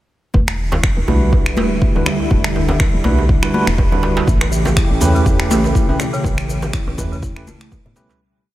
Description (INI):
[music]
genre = afro house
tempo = 122 BPM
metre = 4/4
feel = swing 55% on 16ths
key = E dorian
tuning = A4 = 440 Hz
[part]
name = warm analog pad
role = sustained chords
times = 0.3-8.2 s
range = C#3 to G4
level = -23 LUFS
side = right 1 dB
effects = chorus, sidechain pumping
[part]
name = woody FM bass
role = bass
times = 0.3-7.9 s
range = E1 to A2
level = -20 LUFS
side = equal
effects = sidechain pumping
[part]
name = electronic kick drum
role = drums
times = 0.3-7.8 s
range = none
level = -16 LUFS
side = equal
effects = small room ambience
[part]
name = congas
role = percussion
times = 0.3-7.9 s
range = none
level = -24 LUFS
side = left 2 dB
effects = none
[part]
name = djembe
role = percussion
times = 0.3-8.2 s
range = none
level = -25 LUFS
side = right 1 dB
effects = none
[part]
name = electronic finger snaps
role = drums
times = 0.5-7.7 s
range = none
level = -24 LUFS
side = equal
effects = small room ambience
[part]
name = bell-like tine electric piano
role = stabs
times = 1.1-8.2 s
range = G3 to B4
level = -23 LUFS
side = right 3 dB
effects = medium stereo tremolo, sidechain pumping, low-pass filter, analog delay
[part]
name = marimba with soft mallets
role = arpeggios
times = 4.3-8.2 s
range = B2 to E4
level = -23 LUFS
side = equal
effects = sidechain pumping, analog delay
[part]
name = maracas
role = percussion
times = 4.3-8.2 s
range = none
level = -30 LUFS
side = left 3 dB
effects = none
[sound]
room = light reverb, small room ambience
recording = none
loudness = -13 LUFS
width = side -15 dB against mid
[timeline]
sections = 0.3-8.2 groove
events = filter sweep on tine electric piano 0.3-8.2; fade-out 5.6-8.2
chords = 0.3 Em7; 4.3 A7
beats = | 0.34 0.84 1.33 1.82 | 2.31 2.80 3.29 3.79 | 4.28 4.77 5.26 5.75 | 6.25 6.74 7.23 7.72